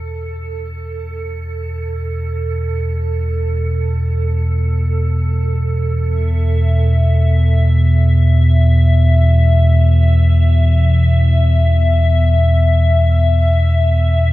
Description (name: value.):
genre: dark ambient drone.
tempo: free time.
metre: none.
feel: none.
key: unclear.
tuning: A4 = 443 Hz.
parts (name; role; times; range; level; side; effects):
deep rumbling drone; drone; 0.0-14.3 s; E2 to B2; -12 LUFS; equal; built-in reverb.
icy glass pad; texture; 0.0-14.3 s; A4 to E5; -22 LUFS; left 1 dB; chorus, built-in reverb, shimmer reverb.
room: light reverb.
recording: cassette tape.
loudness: -12 LUFS.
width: side -17 dB against mid.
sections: 0.0-14.3 A section.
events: fade-in on ambient pad 0.0-14.3.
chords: 0.0 E5.